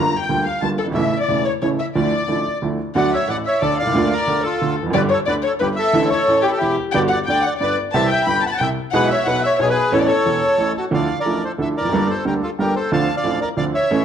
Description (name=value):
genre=tango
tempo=181 BPM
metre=3/4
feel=rubato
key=D major, D minor from 10.9 s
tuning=A4 = 441 Hz
part: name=bandoneon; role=melody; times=0.0-14.0 s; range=E4 to B5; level=-20 LUFS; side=equal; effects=none
part: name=warm violin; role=second line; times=0.0-10.7 s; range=G4 to B5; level=-23 LUFS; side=left 6 dB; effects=none
part: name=bright upright piano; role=accompaniment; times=0.0-14.0 s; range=E1 to A4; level=-20 LUFS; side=right 2 dB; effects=none
room=moderate large studio reverb, RT60 1.1 s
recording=dark, warm production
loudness=-16 LUFS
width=side -8 dB against mid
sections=0.0-3.0 A section; 3.0-10.9 B section; 10.9-14.0 A section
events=none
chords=0.0 Gm7; 1.0 A; 2.0 Dmadd9; 3.0 D; 4.0 Bbmaj7/D; 4.9 G; 5.9 Asus4; 6.3 A5; 6.9 Gmaj7; 7.9 C; 8.9 E/B; 9.9 Aadd9; 10.9 Dmadd9; 11.9 Gmadd9; 12.9 Dm7